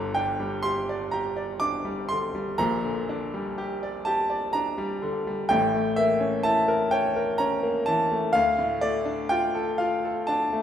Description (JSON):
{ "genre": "classical, romantic nocturne for solo piano", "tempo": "62 BPM", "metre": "3/4", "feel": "rubato", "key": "unclear", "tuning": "A4 = 440 Hz", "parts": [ { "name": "bright grand piano", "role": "solo", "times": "0.0-10.6 s", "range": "G1 to D6", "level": "-23 LUFS", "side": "equal", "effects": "none" } ], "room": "moderate recital hall reverb, RT60 1.7 s", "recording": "minimal, uncompressed stereo recording", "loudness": "-23 LUFS", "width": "side -9 dB against mid", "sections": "0.0-10.6 A section", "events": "none", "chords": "0.0 G5; 2.6 Gm/Bb; 5.5 A; 8.4 Dm" }